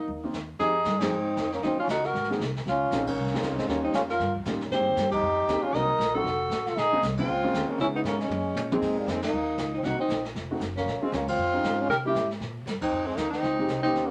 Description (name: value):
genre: jazz, small-group swing and bop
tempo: 234 BPM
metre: 4/4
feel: swing 59% on 8ths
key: Ab major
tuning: A4 = 441 Hz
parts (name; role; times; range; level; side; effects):
- trombone with cup mute; melody; 0.0-14.1 s; G3 to Bb4; -32 LUFS; equal; none
- clear alto saxophone; second line; 0.0-14.1 s; Bb3 to Eb5; -31 LUFS; equal; none
- upright bass; bass; 0.1-14.1 s; F1 to C3; -37 LUFS; equal; none
- jazz brush drum kit; drums; 0.1-14.1 s; brushed snare drum, crash cymbal, hi-hat, kick drum, ride cymbal, snare drum, toms; -38 LUFS; equal; none
- warm grand piano; accompaniment; 0.2-14.1 s; F3 to Ab4; -34 LUFS; equal; none
room: moderate studio reverb, RT60 0.8 s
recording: none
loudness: -27 LUFS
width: mono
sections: 0.6-8.8 A section; 8.8-14.1 B section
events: band accent 1.0, 3.0, 5.1, 7.2, 9.2, 11.3, 12.8; drum fill 8.3-8.8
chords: 0.0 Ab69 (rootless); 0.6 Fm7; 1.6 Ebm9; 2.1 Abadd9; 2.7 Dbmaj9; 3.7 Eb9; 4.7 Abmaj7; 5.7 Cm7b5; 6.3 F; 6.8 Bbm7; 7.8 Dbm7; 8.3 Gbadd9; 8.8 Ab69; 9.8 Cm7b5; 10.4 F7b9; 10.9 Bbm9; 11.9 C7; 12.9 F7(no3)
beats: 0.08 0.34 | 0.60 0.85 1.11 1.37 | 1.63 1.89 2.14 2.40 | 2.66 2.92 3.17 3.43 | 3.69 3.94 4.20 4.46 | 4.71 4.97 5.23 5.49 | 5.74 6.00 6.25 6.51 | 6.77 7.02 7.28 7.54 | 7.79 8.05 8.30 8.56 | 8.82 9.07 9.33 9.59 | 9.84 10.10 10.36 10.61 | 10.87 11.12 11.38 11.64 | 11.89 12.15 12.40 12.66 | 12.92 13.17 13.43 13.69 | 13.94